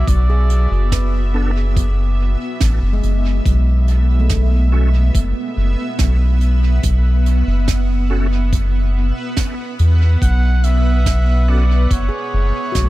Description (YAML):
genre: ambient dub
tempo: 71 BPM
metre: 4/4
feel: straight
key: unclear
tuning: A4 = 440 Hz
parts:
  - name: trumpet with cup mute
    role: melody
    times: 0.0-1.3, 10.2-12.9 s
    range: C#5 to F#5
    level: -27 LUFS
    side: right 1 dB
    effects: dub echo
  - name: granular cloud pad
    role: sustained chords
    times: 0.0-12.9 s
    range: B3 to F#5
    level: -25 LUFS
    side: right 1 dB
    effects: built-in reverb
  - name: soft dub sub bass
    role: bass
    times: 0.0-12.9 s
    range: F#1 to E2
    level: -14 LUFS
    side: equal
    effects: tube saturation
  - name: electronic kick drum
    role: drums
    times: 0.1-12.9 s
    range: none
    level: -19 LUFS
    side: equal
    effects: overdrive
  - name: jazz brush drum kit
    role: drums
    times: 0.1-12.9 s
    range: hi-hat, snare drum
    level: -29 LUFS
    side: right 8 dB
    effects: dub echo
  - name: handpan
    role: arpeggios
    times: 0.3-12.9 s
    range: G#3 to B4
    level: -30 LUFS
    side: left 1 dB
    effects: dub echo
  - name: bright tonewheel organ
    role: stabs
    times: 1.3-11.7 s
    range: B3 to A4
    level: -32 LUFS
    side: right 2 dB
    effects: chorus vibrato, fast rotary speaker, dub echo
room: small room ambience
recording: none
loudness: -14 LUFS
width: side -17 dB against mid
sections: 0.0-12.9 A section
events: none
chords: 0.0 Bm; 3.5 A5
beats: | 0.08 0.92 1.77 2.61 | 3.46 4.30 5.15 5.99 | 6.84 7.68 8.53 9.37 | 10.22 11.06 11.91 12.75